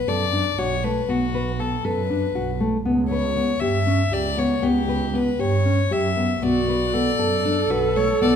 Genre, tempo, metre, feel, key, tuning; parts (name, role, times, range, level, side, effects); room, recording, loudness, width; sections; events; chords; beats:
contemporary instrumental, chamber music in an uneven meter; 236 BPM (eighths); 7/8; straight; B minor; A4 = 439 Hz
rich violin; melody; 0.0-8.3 s; F#4 to E5; -24 LUFS; left 7 dB
dark double bass; bass; 0.0-8.4 s; B1 to G2; -25 LUFS; right 4 dB
nylon-string guitar; arpeggios; 0.1-8.4 s; A3 to B4; -23 LUFS; left 1 dB
dark viola; second line; 6.4-8.4 s; F#4 to A4; -22 LUFS; right 4 dB
moderate recital hall reverb, RT60 1.4 s; minimal, uncompressed stereo recording; -19 LUFS; side -8 dB against mid
0.0-8.4 A section
0.0 B7(no3); 2.9 C#m7b5; 6.4 Bm7
0.08 0.33 0.58 0.84 | 1.09 1.34 1.59 1.84 2.10 2.35 2.60 | 2.85 3.10 3.36 3.61 3.86 4.12 4.37 | 4.63 4.88 5.14 5.39 5.65 5.91 6.16 | 6.42 6.68 6.93 7.19 7.44 7.70 7.95 | 8.21